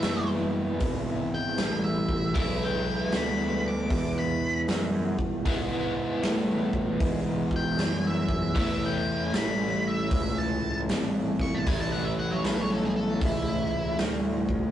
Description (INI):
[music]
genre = blues rock power trio and southern rock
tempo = 77 BPM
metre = 4/4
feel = swing 65% on 8ths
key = E mixolydian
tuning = A4 = 440 Hz
[part]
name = octave-fuzz lead guitar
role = melody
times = 0.0-14.0 s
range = E4 to D6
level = -32 LUFS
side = equal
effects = distortion
[part]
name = overdriven electric guitar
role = riff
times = 0.0-14.7 s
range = A2 to E4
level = -29 LUFS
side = equal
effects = tremolo
[part]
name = fuzz picked electric bass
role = bass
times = 0.0-14.7 s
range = F#1 to A2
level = -32 LUFS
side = equal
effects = overdrive
[part]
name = huge arena drum kit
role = drums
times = 0.0-14.6 s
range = hi-hat, kick drum, snare drum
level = -29 LUFS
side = equal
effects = none
[sound]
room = wet stone room reverb, RT60 1.4 s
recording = rough rehearsal-room recording, warm saturation, nothing above 10.9 kHz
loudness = -25 LUFS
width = side -11 dB against mid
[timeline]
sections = 0.0-14.7 A section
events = lead electric guitar solo 0.0-14.7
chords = 0.0 E; 8.6 A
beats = 0.04 0.81 1.59 | 2.36 3.14 3.92 4.69 | 5.47 6.24 7.02 7.79 | 8.57 9.35 10.12 10.89 | 11.67 12.44 13.21 13.99